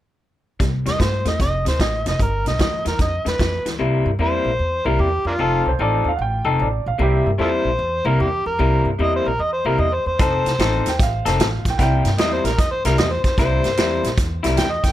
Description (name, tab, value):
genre	electric blues shuffle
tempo	150 BPM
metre	4/4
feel	swing 66% on 8ths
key	C mixolydian from 3.8 s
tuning	A4 = 439 Hz
part	electric guitar through a small old amp	riff	0.6-14.7 s	F2 to A4	-23 LUFS	left 4 dB	none
part	upright bass	bass	0.6-14.9 s	F1 to G2	-22 LUFS	equal	none
part	vintage drum kit	drums	0.6-3.7, 10.2-14.9 s	hi-hat, kick drum, snare drum	-21 LUFS	right 1 dB	none
part	overdriven harmonica	melody	0.9-14.9 s	Bb3 to G5	-23 LUFS	equal	none
part	warm upright piano	second line	5.7-7.3, 10.9-12.1 s	G4 to G5	-25 LUFS	right 5 dB	none
room	light reverb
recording	none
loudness	-17 LUFS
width	side -13 dB against mid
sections	0.6-3.8 A section; 3.8-14.9 B section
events	none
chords	0.6 C; 1.4 F; 2.2 G7; 3.8 C7; 5.4 F7; 7.0 C7; 10.2 F7; 11.8 C7